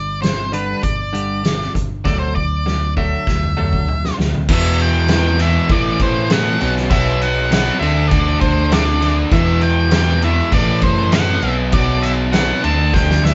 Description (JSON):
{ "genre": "quiet-loud alternative rock", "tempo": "99 BPM", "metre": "4/4", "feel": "straight", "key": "E minor", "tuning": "A4 = 445 Hz", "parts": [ { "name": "octave-fuzz lead guitar", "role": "melody", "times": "0.0-13.3 s", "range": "B4 to A5", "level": "-24 LUFS", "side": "equal", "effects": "distortion" }, { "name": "twelve-string electric guitar", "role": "arpeggios", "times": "0.0-4.5 s", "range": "G2 to A3", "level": "-28 LUFS", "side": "equal", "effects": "none" }, { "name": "overdriven picked electric bass", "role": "bass", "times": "0.0-13.3 s", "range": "G1 to A2", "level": "-22 LUFS", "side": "equal", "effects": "none" }, { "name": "loose indie drum kit", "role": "drums", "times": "0.2-13.3 s", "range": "crash cymbal, hi-hat, kick drum, snare drum, toms", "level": "-21 LUFS", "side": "equal", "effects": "none" }, { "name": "distorted electric guitar", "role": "riff", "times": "4.5-13.3 s", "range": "E2 to D4", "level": "-21 LUFS", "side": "equal", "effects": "distortion" } ], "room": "moderate studio reverb, RT60 0.6 s", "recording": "band playing live in one room, nothing above 7.8 kHz", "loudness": "-16 LUFS", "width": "mono", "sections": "0.0-4.5 A section; 4.5-13.3 B section", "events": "drum fill 2.1-4.5, 12.9-13.3", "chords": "0.0 G5; 2.1 Dadd9; 4.5 E5; 5.7 A5; 6.6 B5; 7.8 D5; 9.3 E5; 10.5 A5; 11.4 B5; 12.6 D5" }